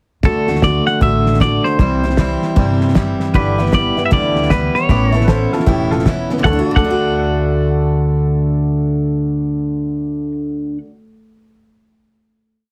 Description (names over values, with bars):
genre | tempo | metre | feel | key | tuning
honky-tonk and classic country | 154 BPM | 4/4 | swing 63% on 8ths | D major | A4 = 440 Hz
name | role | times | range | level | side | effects
picked steel-string acoustic guitar | accompaniment | 0.2-11.0 s | G2 to F#4 | -20 LUFS | equal | none
upright bass | bass | 0.2-10.8 s | E1 to D2 | -21 LUFS | equal | none
cloth-damped thuddy drum kit | drums | 0.2-6.9 s | crash cymbal, hi-hat, kick drum, snare drum | -20 LUFS | equal | none
clean electric guitar | melody | 0.3-10.8 s | A4 to F#5 | -23 LUFS | equal | none
pedal steel guitar | sustained chords | 3.4-10.3 s | E4 to D5 | -31 LUFS | equal | none
bright upright piano | second line | 5.2-10.8 s | E4 to C5 | -27 LUFS | equal | none
room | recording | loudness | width
light reverb | heavily compressed radio sound, multiband compression | -16 LUFS | mono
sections
0.2-6.4 verse; 6.4-9.6 final chord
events
none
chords
0.2 D; 1.8 C; 3.3 G6; 4.9 Aadd9; 6.4 D